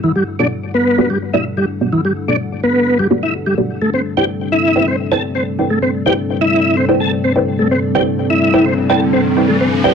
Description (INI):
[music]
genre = breakbeat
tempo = 127 BPM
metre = 4/4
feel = straight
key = A dorian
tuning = A4 = 436 Hz
[part]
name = dark analog pad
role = sustained chords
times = 0.0-9.9 s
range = G3 to F#5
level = -18 LUFS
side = left 1 dB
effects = chorus, vintage 12-bit sampler grit
[part]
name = tonewheel organ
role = riff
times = 0.0-9.9 s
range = E3 to A4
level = -16 LUFS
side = equal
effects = chorus vibrato, fast rotary speaker, low-pass filter, ping-pong delay
[part]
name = filtered dub chord stab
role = stabs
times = 0.4-9.9 s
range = B3 to G5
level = -17 LUFS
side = right 1 dB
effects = phaser, wide subtle chorus, ping-pong delay
[part]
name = riser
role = sound effects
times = 8.2-9.9 s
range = none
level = -24 LUFS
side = left 1 dB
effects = none
[sound]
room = moderate small room reverb, RT60 0.5 s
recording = none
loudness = -13 LUFS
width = side -6 dB against mid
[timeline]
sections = 0.0-9.9 A section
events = filter sweep on tonewheel organ 0.0-9.9; filter sweep on synth stab 0.0-9.9; filter sweep on analog synth pad 0.0-9.9; riser 8.2-9.9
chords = 0.0 Em11; 3.8 Am11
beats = | 0.04 0.51 0.98 1.45 | 1.93 2.40 2.87 3.34 | 3.81 4.29 4.76 5.23 | 5.71 6.18 6.65 7.12 | 7.59 8.07 8.54 9.01 | 9.48